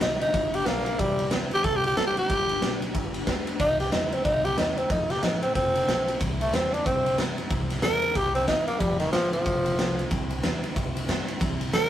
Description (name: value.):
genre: rockabilly.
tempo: 184 BPM.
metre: 4/4.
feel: swing 60% on 8ths.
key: C major.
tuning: A4 = 440 Hz.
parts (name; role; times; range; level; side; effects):
growling tenor saxophone; melody; 0.0-11.9 s; Eb3 to Bb4; -24 LUFS; equal; none.
picked steel-string acoustic guitar; accompaniment; 0.0-11.9 s; C3 to C5; -33 LUFS; left 1 dB; none.
upright bass; bass; 0.0-11.9 s; F1 to G2; -34 LUFS; equal; none.
raw garage drum kit; drums; 0.0-11.8 s; kick drum, ride cymbal, snare drum; -28 LUFS; equal; none.
room: moderate studio reverb, RT60 0.6 s.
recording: rough rehearsal-room recording.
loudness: -23 LUFS.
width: side -11 dB against mid.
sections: 0.0-3.6 A section; 3.6-11.9 B section.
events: tenor saxophone solo 3.6-11.9.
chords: 0.0 G; 1.0 C; 2.3 G; 3.6 C; 4.9 F; 6.2 C; 8.8 F; 10.1 C.